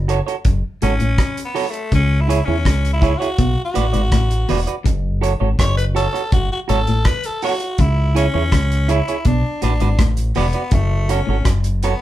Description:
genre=roots reggae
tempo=82 BPM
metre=4/4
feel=straight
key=F# minor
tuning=A4 = 442 Hz
part: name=deep dub fingered electric bass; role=bass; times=0.0-11.9 s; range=E1 to E2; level=-18 LUFS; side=equal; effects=none
part: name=semi-hollow electric guitar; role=accompaniment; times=0.1-11.9 s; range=E4 to D5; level=-22 LUFS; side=right 6 dB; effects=none
part: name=damped 70s drum kit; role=drums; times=0.1-12.0 s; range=hi-hat, kick drum, rim click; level=-19 LUFS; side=equal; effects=none
part: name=clean electric guitar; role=riff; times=0.5-11.7 s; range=E2 to E3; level=-24 LUFS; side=left 4 dB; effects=none
part: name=raspy tenor saxophone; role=melody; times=0.8-12.0 s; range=A3 to C#5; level=-23 LUFS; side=left 2 dB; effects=none
room=moderate studio reverb, RT60 0.5 s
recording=band playing live in one room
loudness=-15 LUFS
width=side -14 dB against mid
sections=0.0-12.0 A section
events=tenor saxophone solo 0.0-12.0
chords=0.0 F#m; 1.9 C#m; 3.4 Bm; 4.9 F#m; 7.8 C#m; 9.3 Bm; 10.7 F#m

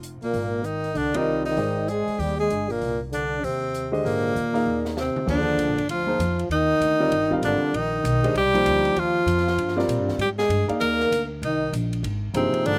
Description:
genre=modal jazz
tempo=195 BPM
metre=4/4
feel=swing 62% on 8ths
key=Eb major from 5.3 s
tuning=A4 = 440 Hz
part: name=upright bass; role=bass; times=0.0-12.8 s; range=F1 to Bb2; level=-31 LUFS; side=equal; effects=none
part: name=open jazz drum kit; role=drums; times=0.0-12.7 s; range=crash cymbal, hi-hat, kick drum, ride cymbal, snare drum, toms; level=-41 LUFS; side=equal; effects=none
part: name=bright tenor saxophone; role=melody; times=0.2-12.8 s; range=Bb3 to Bb4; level=-27 LUFS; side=equal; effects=none
part: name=breathy trombone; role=second line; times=0.2-12.8 s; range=Bb2 to Bb3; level=-29 LUFS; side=equal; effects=none
part: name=warm grand piano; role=accompaniment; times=1.1-12.8 s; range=D3 to G5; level=-29 LUFS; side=equal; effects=slapback echo
room=little or no reverb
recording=recorded outdoors, with no room sound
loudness=-23 LUFS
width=mono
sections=0.0-5.3 A section; 5.3-12.8 B section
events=band accent 1.1; drum fill 4.7-5.3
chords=0.3 Abmaj9; 5.3 Ebmaj9; 10.2 Abmaj9

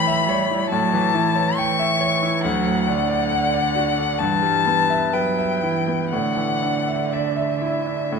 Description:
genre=classical, slow romantic movement for piano trio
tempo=58-72 BPM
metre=4/4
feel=rubato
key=unclear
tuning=A4 = 440 Hz
part: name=dark violin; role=melody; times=0.0-8.2 s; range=E5 to C#6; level=-22 LUFS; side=left 7 dB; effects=none
part: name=warm cello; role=second line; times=0.0-8.2 s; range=C#3 to G3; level=-24 LUFS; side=right 7 dB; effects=none
part: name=bright concert grand piano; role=accompaniment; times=0.0-8.2 s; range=D2 to G5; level=-23 LUFS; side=equal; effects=none
room=wet recital hall reverb, RT60 1.6 s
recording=minimal, uncompressed stereo recording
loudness=-18 LUFS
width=side -5 dB against mid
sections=0.0-8.2 A section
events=none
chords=0.0 A7; 2.4 D; 4.2 Em/G; 6.1 Asus4

